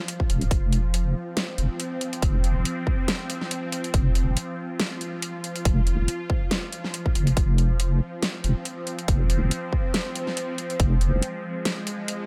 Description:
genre	deep dubstep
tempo	140 BPM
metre	4/4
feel	swing 55% on 16ths, half-time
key	F minor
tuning	A4 = 436 Hz
part	bowed-like drone	sustained chords	0.0-12.3 s	F3 to F4	-34 LUFS	equal	built-in reverb, phaser
part	dubstep drum kit	drums	0.1-12.2 s	hi-hat, snare drum	-31 LUFS	equal	none
part	electronic kick drum	drums	0.2-10.9 s	none	-26 LUFS	equal	none
part	deep soft wobble bass	bass	0.3-11.2 s	Eb1 to Gb1	-25 LUFS	equal	chorus
room	little or no reverb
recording	none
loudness	-25 LUFS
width	mono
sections	0.0-12.3 A section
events	none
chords	0.0 F5

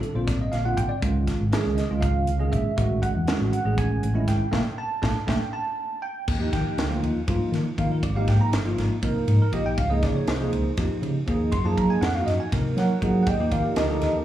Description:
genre	electric jazz fusion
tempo	240 BPM (eighths)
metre	7/8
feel	straight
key	unclear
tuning	A4 = 440 Hz
part	bell-like tine electric piano	accompaniment	0.0-14.2 s	D3 to C6	-25 LUFS	right 2 dB	analog chorus, slapback echo
part	crisp fusion drum kit	drums	0.0-14.1 s	crash cymbal, hi-hat, kick drum, ride cymbal, snare drum	-29 LUFS	equal	none
part	fingered electric bass	bass	0.1-14.1 s	G1 to Gb3	-24 LUFS	equal	none
room	light reverb, small room ambience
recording	live gig heard through the venue's PA, club reverb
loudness	-21 LUFS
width	side -12 dB against mid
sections	0.0-6.3 A section; 6.3-14.2 A section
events	band accent 4.5-6.3; drum fill 4.8-6.3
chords	0.0 Bbadd9; 1.0 Dbadd9; 2.8 Amaj7; 4.5 Bbmaj7(no3); 6.3 Ebmaj9; 8.0 Abmaj7sus2; 9.8 Dbmaj9; 11.5 Gbmaj9; 13.3 Ebmaj9

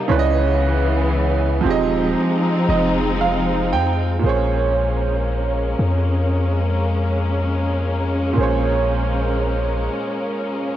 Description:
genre	R&B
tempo	58 BPM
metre	4/4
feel	swing 54% on 16ths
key	Bb minor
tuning	A4 = 440 Hz
part	clear grand piano	accompaniment	0.0-10.8 s	Bb2 to G5	-22 LUFS	right 6 dB	cassette tape
part	warm studio string section	sustained chords	0.0-10.8 s	Db3 to Eb4	-22 LUFS	left 2 dB	cassette tape
part	glassy wavetable pluck	texture	0.0-1.1 s	D5 to A5	-43 LUFS	left 1 dB	none
part	long sustained 808-style bass	bass	0.1-9.9 s	Eb1 to F2	-21 LUFS	left 1 dB	none
room	light reverb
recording	home recording on cassette, nothing above 10.5 kHz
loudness	-17 LUFS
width	side -12 dB against mid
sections	0.0-4.2 A section; 4.2-10.8 B section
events	grand piano fill 2.2-4.2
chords	0.1 Dbm7; 1.6 Fm7; 4.2 Bbm9

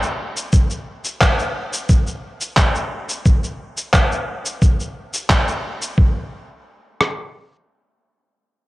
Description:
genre	sunset chillout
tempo	88 BPM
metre	4/4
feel	straight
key	none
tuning	none
part	electronic cabasa and handclaps	drums	0.0-5.9 s	none	-21 LUFS	equal	none
part	dusty soul sampler-style drum kit	drums	0.5-7.2 s	kick drum, rim click	-16 LUFS	equal	none
room	light reverb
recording	worn, warbling old tape, cassette tape, warbly pitch drift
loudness	-17 LUFS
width	side -19 dB against mid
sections	0.0-6.0 A section; 6.0-8.7 B section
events	none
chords	none

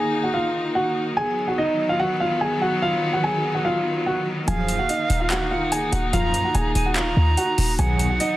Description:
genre	hip hop, trap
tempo	145 BPM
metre	4/4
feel	half-time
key	Eb minor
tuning	A4 = 440 Hz
part	dark concert grand piano	melody	0.0-8.4 s	D#4 to Ab5	-23 LUFS	equal	none
part	bright studio string section	sustained chords	0.0-8.4 s	Eb3 to Eb4	-26 LUFS	left 1 dB	none
part	jazz flute	second line	4.5-8.4 s	F5 to Bb5	-26 LUFS	right 4 dB	digital delay
part	mellow synth brass	stabs	4.5-8.1 s	Bb1 to F#3	-26 LUFS	equal	chorus
part	short 808-style bass	bass	4.5-8.2 s	Eb1 to Eb2	-22 LUFS	equal	none
part	trap drum kit	drums	4.5-8.3 s	handclaps, hi-hat	-28 LUFS	left 1 dB	overdrive
room	little or no reverb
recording	dense, heavily limited modern master, vinyl crackle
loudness	-19 LUFS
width	side -15 dB against mid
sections	0.0-8.4 A section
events	none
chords	0.0 Ebmadd9; 1.2 B; 4.5 Ebmadd9; 7.8 B

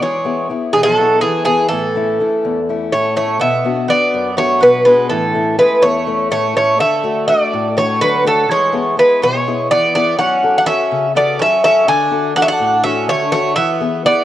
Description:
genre	greek folk, Greek bouzouki band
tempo	248 BPM (eighths)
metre	7/8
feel	straight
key	A major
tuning	A4 = 440 Hz
part	Greek bouzouki	melody	0.0-14.2 s	G#4 to G#5	-13 LUFS	equal	cassette tape
part	Greek bouzouki	second line	0.0-14.2 s	E3 to D4	-22 LUFS	right 6 dB	cassette tape
part	fingerpicked acoustic archtop guitar	accompaniment	0.0-14.2 s	E2 to A4	-20 LUFS	left 6 dB	cassette tape
room	moderate lush hall reverb, RT60 2.8 s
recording	home recording on cassette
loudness	-12 LUFS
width	side -13 dB against mid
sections	0.0-3.4 A section; 3.4-14.2 B section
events	none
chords	0.0 E; 1.7 A; 3.4 Bm; 5.1 A; 6.8 D; 8.5 E; 10.2 F#m; 11.9 D; 13.6 E

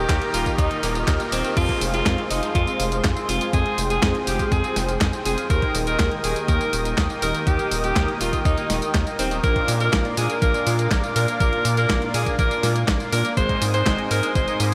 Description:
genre	italo disco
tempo	122 BPM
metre	4/4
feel	straight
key	F dorian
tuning	A4 = 440 Hz
part	edgy alto saxophone	melody	0.0-14.6 s	C4 to C5	-27 LUFS	equal	analog delay
part	warm analog pad	sustained chords	0.0-14.7 s	G4 to Eb6	-31 LUFS	equal	chorus
part	electric guitar with an envelope filter	arpeggios	0.0-14.7 s	F2 to F4	-36 LUFS	equal	lush chorus, analog delay
part	mellow synth brass	stabs	0.0-14.7 s	Ab2 to Bb4	-32 LUFS	equal	chorus
part	round analog bass	bass	0.0-14.7 s	Eb1 to Bb2	-28 LUFS	equal	none
part	clean 12-bit digital drum machine	drums	0.1-14.7 s	crash cymbal, handclaps, hi-hat, snare drum, tambourine	-30 LUFS	equal	high-pass filter on hats, high-pass filter on perc, high-pass filter on snare, high-pass filter on cymbals, high-pass filter on room
part	electronic kick drum	drums	0.1-14.5 s	none	-26 LUFS	equal	none
room	wet huge ambient reverb, RT60 7.8 s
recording	dreamy mix soaked in reverb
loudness	-21 LUFS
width	mono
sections	0.0-1.6 A section; 1.6-14.7 B section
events	filter sweep on analog polysynth 0.0-1.6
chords	0.0 Eb; 1.6 Fm; 5.5 Eb; 9.4 Bb; 13.4 Ab

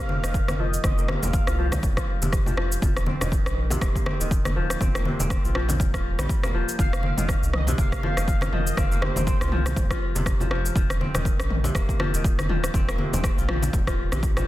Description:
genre	afro house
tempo	121 BPM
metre	4/4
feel	swing 57% on 16ths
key	unclear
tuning	A4 = 439 Hz
part	expressive portamento lead	melody	0.0-2.1, 6.8-10.0 s	C5 to F5	-34 LUFS	equal	ensemble chorus, dub echo
part	kora	arpeggios	0.0-14.5 s	C3 to F4	-31 LUFS	left 2 dB	sidechain pumping, low-pass filter, dub echo
part	congas	percussion	0.1-14.5 s	none	-31 LUFS	left 1 dB	none
part	round analog bass	bass	0.2-14.4 s	Eb1 to C2	-28 LUFS	equal	sidechain pumping
part	house drum kit	drums	0.2-14.5 s	rim click, shaker, toms	-30 LUFS	equal	overdrive
part	electronic kick drum	drums	0.3-14.3 s	none	-25 LUFS	equal	overdrive
room	little or no reverb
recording	dense, heavily limited modern master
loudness	-21 LUFS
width	side -15 dB against mid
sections	0.0-14.5 A section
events	filter sweep on kora 0.0-14.5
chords	0.0 F5; 2.8 Eb; 6.8 F5; 10.8 Eb5

